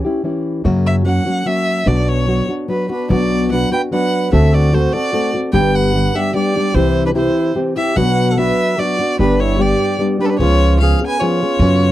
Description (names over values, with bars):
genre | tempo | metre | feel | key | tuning
mexican folk, mariachi | 148 BPM | 3/4 | straight | B harmonic minor, B minor from 3.1 s | A4 = 440 Hz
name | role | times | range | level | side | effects
nylon-string guitar | accompaniment | 0.0-11.9 s | F#2 to A4 | -17 LUFS | left 2 dB | none
upright bass | bass | 0.6-11.9 s | G1 to F#2 | -16 LUFS | equal | none
clear violin | melody | 0.9-11.9 s | A4 to G#5 | -20 LUFS | equal | none
dark trumpet | second line | 2.9-11.9 s | C#4 to B4 | -23 LUFS | right 6 dB | none
room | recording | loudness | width
little or no reverb | dry, close 1970s-style studio recording | -13 LUFS | side -14 dB against mid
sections
0.0-3.1 A section; 3.1-11.9 B section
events
none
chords
0.0 C#dim; 0.6 F#; 1.9 Bm; 4.3 D7; 5.5 G; 6.7 C; 8.0 Bm; 9.2 G; 10.4 C#7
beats
0.23 | 0.64 1.05 1.46 | 1.86 2.27 2.68 | 3.09 3.50 3.91 | 4.32 4.73 5.13 | 5.54 5.94 6.34 | 6.75 7.15 7.56 | 7.97 8.38 8.79 | 9.19 9.60 10.00 | 10.40 10.80 11.20 | 11.61